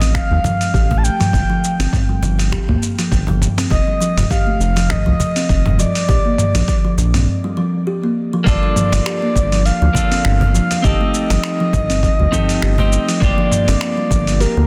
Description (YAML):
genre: organic downtempo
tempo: 101 BPM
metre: 4/4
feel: swing 55% on 16ths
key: G minor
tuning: A4 = 440 Hz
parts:
  - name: breathy flute-like synth lead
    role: melody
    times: 0.0-14.7 s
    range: Bb4 to A5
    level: -24 LUFS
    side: equal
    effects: chorus, cassette tape, delay
  - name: kalimba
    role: arpeggios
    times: 0.0-14.7 s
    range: F3 to G4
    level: -23 LUFS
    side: equal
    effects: tape echo
  - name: round analog bass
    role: bass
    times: 0.0-14.6 s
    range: F1 to Eb2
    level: -18 LUFS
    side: equal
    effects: sidechain pumping
  - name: dusty soul sampler-style drum kit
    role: drums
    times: 0.0-14.5 s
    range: finger snaps, hi-hat, shaker, toms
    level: -24 LUFS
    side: equal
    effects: overdrive, soft clipping on snare
  - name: cajon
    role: percussion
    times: 0.0-13.8 s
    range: none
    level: -27 LUFS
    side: equal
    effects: none
  - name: electronic kick drum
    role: drums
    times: 0.1-14.2 s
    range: none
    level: -21 LUFS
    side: equal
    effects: overdrive
  - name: clean electric guitar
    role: accompaniment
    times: 8.4-14.7 s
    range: Bb3 to C5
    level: -25 LUFS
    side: equal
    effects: sidechain pumping, tape echo
room: light reverb, digital ambience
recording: dense, heavily limited modern master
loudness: -16 LUFS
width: mono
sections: 0.0-8.5 A section; 8.5-14.7 B section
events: break 7.3-8.5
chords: 0.0 Am; 1.3 N.C.; 3.7 F5; 6.1 Bb; 8.5 Gm7; 10.8 F7/G; 13.2 Gm7